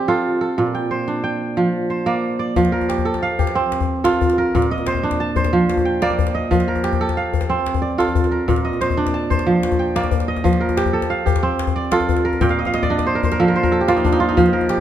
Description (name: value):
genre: west african traditional, West African string and xylophone music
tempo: 122 BPM (dotted quarters)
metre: 12/8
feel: straight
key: F mixolydian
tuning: A4 = 444 Hz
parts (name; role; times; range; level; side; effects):
- kora; arpeggios; 0.0-14.8 s; Bb2 to A5; -17 LUFS; right 2 dB; slapback echo
- djembe; percussion; 2.6-14.8 s; none; -22 LUFS; left 6 dB; none
room: wet recital hall reverb, RT60 1.7 s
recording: dark, warm production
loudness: -16 LUFS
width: side -10 dB against mid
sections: 0.0-2.6 A section; 2.6-14.8 B section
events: kora fill 12.4-14.4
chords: 0.0 F; 0.6 Bb; 2.6 F; 4.5 Bb; 6.5 F; 8.5 Bb; 10.4 F; 12.4 Bb